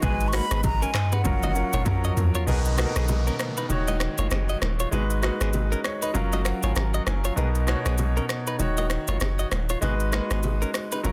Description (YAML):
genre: afrobeats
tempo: 98 BPM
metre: 4/4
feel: swing 58% on 16ths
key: unclear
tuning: A4 = 439 Hz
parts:
  - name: breathy mellow silver concert flute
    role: melody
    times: 0.0-2.2 s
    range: F#5 to C#6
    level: -33 LUFS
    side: equal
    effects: tape echo
  - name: clear grand piano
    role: accompaniment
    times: 0.0-11.1 s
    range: B2 to A#5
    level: -32 LUFS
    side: equal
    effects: none
  - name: direct-recorded clean electric guitar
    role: riff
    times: 0.0-11.0 s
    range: A#3 to D#5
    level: -35 LUFS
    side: equal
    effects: tape echo
  - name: punchy sub bass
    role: bass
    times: 0.0-11.1 s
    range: D#1 to F#2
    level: -27 LUFS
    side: equal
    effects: none
  - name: deep house drum kit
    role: drums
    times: 0.0-11.1 s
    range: finger snaps, handclaps, hi-hat, kick drum, rim click, shaker, toms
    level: -31 LUFS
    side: equal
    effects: soft clipping on snare
  - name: congas and bongos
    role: percussion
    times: 0.0-11.1 s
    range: none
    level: -38 LUFS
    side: equal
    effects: none
  - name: downlifter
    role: sound effects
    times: 2.5-7.4 s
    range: none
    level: -40 LUFS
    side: equal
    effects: none
room: little or no reverb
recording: dense, heavily limited modern master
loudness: -25 LUFS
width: mono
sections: 0.0-2.5 A section; 2.5-11.1 B section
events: drum fill 1.3-2.5; kick muted 2.5-11.1; grand piano fill 5.5-7.4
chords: 0.0 G#m7; 1.3 F#maj7; 2.5 Bmaj7; 3.7 D#m7; 4.9 G#m7; 6.1 F#maj7; 7.4 Bmaj7; 8.6 D#m7; 9.8 G#m7